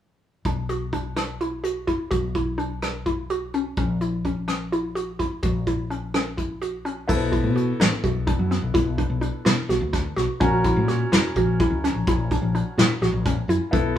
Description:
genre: progressive instrumental, band music in an uneven meter.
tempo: 253 BPM (eighths).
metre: 7/8.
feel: straight.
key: B minor.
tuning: A4 = 440 Hz.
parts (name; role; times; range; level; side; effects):
woody fretless electric bass; bass; 0.4-14.0 s; E1 to B2; -26 LUFS; left 2 dB; none.
hollow square pluck; arpeggios; 0.5-14.0 s; B3 to F#4; -26 LUFS; right 1 dB; chorus.
soft brush drum kit; drums; 0.5-13.8 s; crash cymbal, hi-hat, kick drum, rim click, snare drum; -25 LUFS; equal; none.
bright baby grand piano; accompaniment; 7.1-14.0 s; B3 to A#4; -28 LUFS; left 1 dB; none.
room: moderate large studio reverb, RT60 0.9 s.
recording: band playing live in one room.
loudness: -21 LUFS.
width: side -10 dB against mid.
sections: 0.5-7.1 A section; 7.1-14.0 B section.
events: none.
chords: 0.5 Bm; 3.8 F#7/A#; 7.1 Bm7; 10.4 F#7.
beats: | 0.45 0.69 0.93 1.16 1.40 1.64 1.88 | 2.11 2.35 2.59 2.82 3.06 3.30 3.54 | 3.77 4.01 4.25 4.48 4.72 4.96 5.20 | 5.43 5.67 5.91 6.14 6.38 6.62 6.86 | 7.09 7.33 7.57 7.80 8.04 8.28 8.51 | 8.75 8.99 9.22 9.46 9.70 9.94 10.17 | 10.41 10.65 10.88 11.12 11.36 11.59 11.83 | 12.07 12.30 12.54 12.78 13.01 13.25 13.49 | 13.72 13.96.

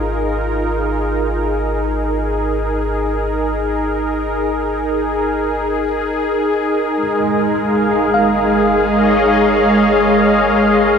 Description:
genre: ambient.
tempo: free time.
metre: none.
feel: none.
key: unclear.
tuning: A4 = 440 Hz.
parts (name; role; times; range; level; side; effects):
warm analog pad; sustained chords; 0.0-11.0 s; Ab3 to F5; -14 LUFS; equal; chorus.
tine electric piano; arpeggios; 0.0-11.0 s; F5; -22 LUFS; equal; overdrive, fast stereo tremolo, tape echo.
deep rumbling drone; bass; 0.0-11.0 s; Ab1; -26 LUFS; equal; built-in reverb.
room: wet huge ambient reverb, RT60 8.3 s.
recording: dreamy mix soaked in reverb.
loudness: -14 LUFS.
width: side -6 dB against mid.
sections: 0.0-11.0 A section.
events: fade-out on synth drone 0.0-11.0.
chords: 0.0 Absus2; 7.0 Dbadd9/Ab.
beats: free time.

